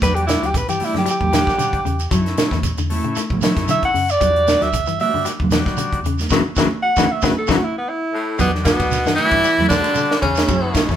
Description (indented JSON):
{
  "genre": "afrobeat",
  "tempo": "114 BPM",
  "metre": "4/4",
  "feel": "swing 54% on 16ths",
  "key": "E dorian",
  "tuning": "A4 = 437 Hz",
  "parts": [
    { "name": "bright alto saxophone", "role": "melody", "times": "0.0-8.4 s", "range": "B3 to F#5", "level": "-19 LUFS", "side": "right 1 dB", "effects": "none" },
    { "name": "combo organ", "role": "accompaniment", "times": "0.0-11.0 s", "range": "G3 to F#5", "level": "-28 LUFS", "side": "left 3 dB", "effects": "spring reverb" },
    { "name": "semi-hollow electric guitar", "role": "arpeggios", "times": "0.0-11.0 s", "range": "C#3 to A3", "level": "-24 LUFS", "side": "left 7 dB", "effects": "none" },
    { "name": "hollow-body short-scale fingered electric bass", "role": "bass", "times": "0.0-11.0 s", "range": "F#1 to F#3", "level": "-24 LUFS", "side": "equal", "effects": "none" },
    { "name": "tight funk drum kit", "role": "drums", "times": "0.0-11.0 s", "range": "hi-hat, kick drum, ride cymbal, snare drum", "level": "-21 LUFS", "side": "equal", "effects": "none" },
    { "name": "congas", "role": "percussion", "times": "0.0-10.9 s", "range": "none", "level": "-25 LUFS", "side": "right 3 dB", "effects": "none" },
    { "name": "shekere", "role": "percussion", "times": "0.0-11.0 s", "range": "none", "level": "-28 LUFS", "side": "right 6 dB", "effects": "none" },
    { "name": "raspy baritone saxophone", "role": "second line", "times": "8.1-11.0 s", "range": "A2 to E3", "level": "-26 LUFS", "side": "left 4 dB", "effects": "none" },
    { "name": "trombone with bucket mute", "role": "second line", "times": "8.1-11.0 s", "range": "A2 to E3", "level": "-27 LUFS", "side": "right 4 dB", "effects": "none" },
    { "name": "bright tenor saxophone", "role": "melody", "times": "8.2-11.0 s", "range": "A3 to E4", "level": "-18 LUFS", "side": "equal", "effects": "none" }
  ],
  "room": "moderate studio reverb, RT60 0.6 s",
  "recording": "band playing live in one room",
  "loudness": "-15 LUFS",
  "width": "side -10 dB against mid",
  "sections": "0.0-8.4 A section; 8.4-11.0 B section",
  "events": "alto saxophone solo 0.0-8.4; band accent 6.3-8.4; drum fill 7.4-8.4",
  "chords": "0.0 Em7; 2.1 F#m7; 4.2 Em7; 6.3 F#5; 8.4 Em7"
}